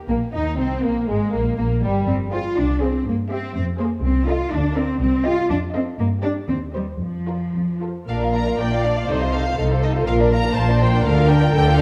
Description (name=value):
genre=quick classical-period movement for string orchestra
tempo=121 BPM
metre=2/4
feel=rubato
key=Eb major, Bb major from 4.0 s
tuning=A4 = 440 Hz
part: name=warm studio violin section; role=melody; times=0.1-11.8 s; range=G3 to Bb5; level=-32 LUFS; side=equal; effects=none
part: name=rich studio violin section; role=second line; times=0.1-11.8 s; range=G3 to F5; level=-29 LUFS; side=equal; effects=none
part: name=rich studio viola section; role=accompaniment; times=0.1-11.8 s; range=G3 to D5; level=-28 LUFS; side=equal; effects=none
part: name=rich studio cello section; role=bass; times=0.1-11.8 s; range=Bb2 to F4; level=-25 LUFS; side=equal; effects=none
part: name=rich studio double bass section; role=bass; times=0.1-11.8 s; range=G1 to G2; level=-25 LUFS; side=equal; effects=none
room=moderate scoring stage reverb, RT60 1.6 s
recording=dark, warm production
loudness=-20 LUFS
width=mono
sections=0.1-8.1 A section; 8.1-11.8 B section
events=none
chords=0.1 Eb5/Bb; 1.1 Absus2; 1.6 Gm; 2.1 Fm; 3.1 Edim/G; 3.6 Fm; 4.0 F7/C; 4.5 Bb/D; 5.0 Cm; 5.5 F7; 6.0 Gm; 6.5 Cm/Eb; 7.0 Bb/F; 8.1 Bb; 9.1 F7/C; 10.1 Bb; 11.0 Bb/D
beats=| 0.09 0.59 | 1.08 1.58 | 2.08 2.57 | 3.06 3.55 | 4.04 4.52 | 5.00 5.49 | 5.99 6.49 | 7.02 7.55 | 8.07 8.59 | 9.09 9.58 | 10.07 10.56 | 11.05 11.54